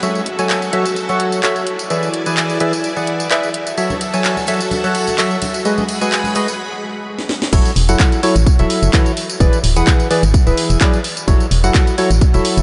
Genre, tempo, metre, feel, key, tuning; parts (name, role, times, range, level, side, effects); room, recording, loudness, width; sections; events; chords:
piano house; 128 BPM; 4/4; swing 54% on 16ths; F# minor; A4 = 440 Hz
string machine, violins; sustained chords; 0.0-7.5 s; E4 to B5; -26 LUFS; equal; ensemble chorus, sidechain pumping
percussive organ stab; riff; 0.0-12.6 s; E3 to G#5; -20 LUFS; equal; lush chorus, vintage 12-bit sampler grit, sidechain pumping, diffuse ambient delay
house drum kit; drums; 0.0-12.6 s; crash cymbal, handclaps, hi-hat, snare drum, tambourine; -24 LUFS; equal
tambourine and congas; percussion; 3.8-6.6 s; -30 LUFS; equal
organ-like FM bass; bass; 7.5-12.6 s; D1 to A1; -17 LUFS; equal; tube saturation, sidechain pumping
electronic kick drum; drums; 7.5-12.3 s; -15 LUFS; equal
moderate cathedral reverb, RT60 6.3 s; dreamy mix soaked in reverb, nothing above 10.5 kHz; -16 LUFS; mono
0.0-7.5 A section; 7.5-12.6 B section
break 6.6-7.5; drum fill 7.2-7.5; drop 7.5-12.6
0.0 F#m7; 1.7 E7; 3.5 F#m7; 5.7 G#m7; 7.5 F#m7; 9.2 E7; 11.0 F#m7